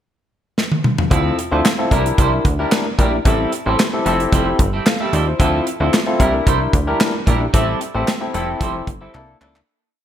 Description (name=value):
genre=early-eighties boogie funk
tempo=112 BPM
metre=4/4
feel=straight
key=D minor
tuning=A4 = 439 Hz
part: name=modern studio drum kit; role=drums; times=0.6-9.7 s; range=handclaps, hi-hat, kick drum, snare drum, toms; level=-18 LUFS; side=equal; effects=gated reverb
part: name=barky tine electric piano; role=accompaniment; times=1.1-9.6 s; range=Bb3 to F5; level=-20 LUFS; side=left 3 dB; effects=tube saturation, lush chorus
part: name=clean electric guitar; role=riff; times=1.1-9.6 s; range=E3 to C5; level=-24 LUFS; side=right 6 dB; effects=lush chorus
part: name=plucky analog bass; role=bass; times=1.1-9.6 s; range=F1 to Eb2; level=-20 LUFS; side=equal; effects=none
room=moderate lush hall reverb, RT60 1.6 s, small room ambience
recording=bright 1980s-style digital production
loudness=-15 LUFS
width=side -10 dB against mid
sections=0.0-1.1 pickup bar; 1.1-9.7 verse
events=drum fill 0.6-1.1, 9.1-9.7; fade-out 7.5-9.7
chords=0.0 N.C.; 1.1 Dm9; 1.9 C9; 3.3 Am7; 4.1 Fmaj9; 5.4 Dm9; 6.2 C9; 7.5 Am7; 8.3 Fmaj9; 9.1 C13